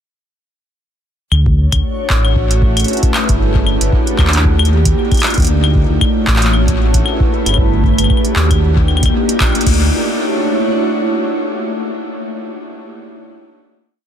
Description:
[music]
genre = IDM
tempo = 115 BPM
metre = 4/4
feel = swing 56% on 16ths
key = D major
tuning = A4 = 440 Hz
[part]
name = glassy FM pad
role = sustained chords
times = 1.3-11.7 s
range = A3 to D5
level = -17 LUFS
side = equal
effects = ensemble chorus, built-in reverb, vintage 12-bit sampler grit
[part]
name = dark detuned saw bass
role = bass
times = 1.3-9.9 s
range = G1 to Eb2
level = -14 LUFS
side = equal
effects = none
[part]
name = booming analog drum machine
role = drums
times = 1.3-9.8 s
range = claves, crash cymbal, handclaps, hi-hat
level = -19 LUFS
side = left 1 dB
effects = overdrive, ping-pong delay
[part]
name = electronic kick drum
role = drums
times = 1.5-9.8 s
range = none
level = -16 LUFS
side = equal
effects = overdrive
[sound]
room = light reverb, digital ambience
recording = dense, heavily limited modern master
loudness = -11 LUFS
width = side -9 dB against mid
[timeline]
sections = 1.3-9.7 groove; 9.7-11.8 final chord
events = band accent 9.4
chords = 1.3 Dmaj9; 2.4 Amaj9; 3.1 Gmaj9; 4.4 Ebmaj9; 5.5 Dmaj9; 6.5 Amaj9; 7.3 Gmaj9; 8.6 Ebmaj9; 9.7 Dmaj9

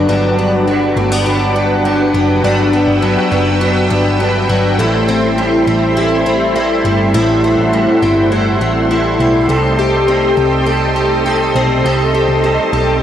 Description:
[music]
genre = dream pop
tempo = 102 BPM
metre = 4/4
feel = straight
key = G major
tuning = A4 = 444 Hz
[part]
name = electric guitar through a small old amp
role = accompaniment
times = 0.0-13.0 s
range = G2 to A4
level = -19 LUFS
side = right 5 dB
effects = harmonic tremolo, analog chorus
[part]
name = string machine, cellos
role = sustained chords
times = 0.0-13.0 s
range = A4 to E6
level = -18 LUFS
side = right 1 dB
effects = ensemble chorus
[part]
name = picked plugged-in twelve-string acoustic guitar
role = arpeggios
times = 0.0-13.0 s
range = G2 to A4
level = -14 LUFS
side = left 2 dB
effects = analog chorus, analog delay
[part]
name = hollow-body short-scale picked electric bass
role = bass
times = 0.0-13.0 s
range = F#1 to C2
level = -18 LUFS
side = equal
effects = none
[part]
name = soft synth bell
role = texture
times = 0.0-13.0 s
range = E4 to E6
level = -27 LUFS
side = right 2 dB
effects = none
[sound]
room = light reverb, digital ambience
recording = dry, gritty hardware recording, cassette tape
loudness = -11 LUFS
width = side -10 dB against mid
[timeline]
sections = 0.1-13.0 A section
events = none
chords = 0.1 Gmaj7; 4.8 Am7; 9.5 Cm6

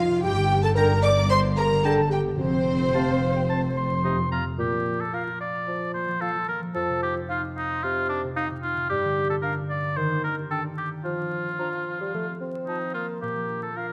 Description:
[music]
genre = cinematic, playful, whimsical film cue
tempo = 111 BPM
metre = 4/4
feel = straight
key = Bb major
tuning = A4 = 440 Hz
[part]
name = warm studio violin section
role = melody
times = 0.0-4.0 s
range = C5 to D6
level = -35 LUFS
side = equal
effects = none
[part]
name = dark studio violin section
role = second line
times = 0.0-4.0 s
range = C5 to D6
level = -36 LUFS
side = equal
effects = none
[part]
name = silver concert flute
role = second line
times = 0.0-13.9 s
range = C5 to D6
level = -32 LUFS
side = equal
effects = none
[part]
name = dark studio viola section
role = accompaniment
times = 0.0-4.0 s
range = C4 to D5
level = -33 LUFS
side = equal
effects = none
[part]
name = dark French horn section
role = sustained chords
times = 0.0-4.0 s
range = C4 to D5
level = -28 LUFS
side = equal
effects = none
[part]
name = concert harp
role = arpeggios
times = 0.0-13.9 s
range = F2 to D6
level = -34 LUFS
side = equal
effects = none
[part]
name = warm studio cello section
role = bass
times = 0.2-4.3 s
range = F2 to G2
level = -31 LUFS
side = equal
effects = none
[part]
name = warm studio double bass section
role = bass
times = 0.2-4.3 s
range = F1 to G1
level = -32 LUFS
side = equal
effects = none
[part]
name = mellow clarinet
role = second line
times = 0.8-13.9 s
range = D4 to C6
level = -36 LUFS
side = equal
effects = none
[part]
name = warm oboe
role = second line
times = 0.8-13.9 s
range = D4 to Bb5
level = -31 LUFS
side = equal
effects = none
[part]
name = dark bassoon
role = accompaniment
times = 0.8-13.7 s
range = Bb2 to C4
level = -34 LUFS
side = equal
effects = none
[sound]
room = moderate scoring stage reverb, RT60 1.8 s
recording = vinyl crackle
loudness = -25 LUFS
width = mono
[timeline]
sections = 0.0-4.6 A section; 4.6-13.9 A section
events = none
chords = 0.2 Gm; 2.4 F; 4.6 Bb; 6.8 F5; 8.9 Gm7; 10.0 Ebmaj7; 11.0 Bb/F; 12.1 F; 13.2 Bb

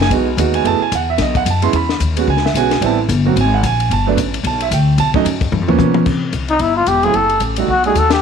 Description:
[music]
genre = jazz, small-group swing and bop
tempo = 222 BPM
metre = 4/4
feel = swing 58% on 8ths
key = unclear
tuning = A4 = 439 Hz
[part]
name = warm concert grand piano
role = accompaniment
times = 0.0-8.0 s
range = F3 to C6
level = -17 LUFS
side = right 10 dB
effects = none
[part]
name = upright bass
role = bass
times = 0.0-8.2 s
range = E1 to C3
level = -17 LUFS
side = left 2 dB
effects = none
[part]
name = compact cocktail drum kit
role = drums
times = 0.0-8.2 s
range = crash cymbal, hi-hat, kick drum, ride cymbal, snare drum, toms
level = -21 LUFS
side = left 7 dB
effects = none
[part]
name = growling trumpet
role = melody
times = 6.5-8.2 s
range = Eb4 to A4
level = -14 LUFS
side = left 2 dB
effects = tape echo
[sound]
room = light reverb, small room ambience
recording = 1960s-style stereo with parts hard left and right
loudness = -13 LUFS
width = side -7 dB against mid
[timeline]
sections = 0.0-6.1 A section; 6.1-8.2 B section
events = drum fill 5.5-6.1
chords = 0.0 G#m7; 0.7 F#m11; 1.2 B5; 1.7 E6; 2.8 Am7; 3.4 G#sus2; 3.9 Gadd9; 5.0 B7; 5.5 G7alt; 6.1 C; 7.2 F#m6; 7.7 B7b13

